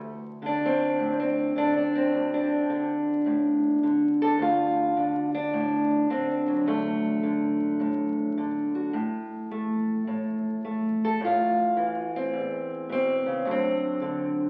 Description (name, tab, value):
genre	acoustic country blues, solo or duo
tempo	106 BPM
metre	4/4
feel	swing 65% on 8ths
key	D mixolydian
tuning	A4 = 440 Hz
part	fingerpicked steel-string acoustic guitar	solo	0.0-14.5 s	D2 to A4	-26 LUFS	equal	none
room	wet large studio reverb, RT60 1.3 s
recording	very old 78 rpm record, vinyl crackle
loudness	-26 LUFS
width	mono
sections	0.0-14.5 A section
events	none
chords	0.0 D7; 8.9 A5; 13.5 D7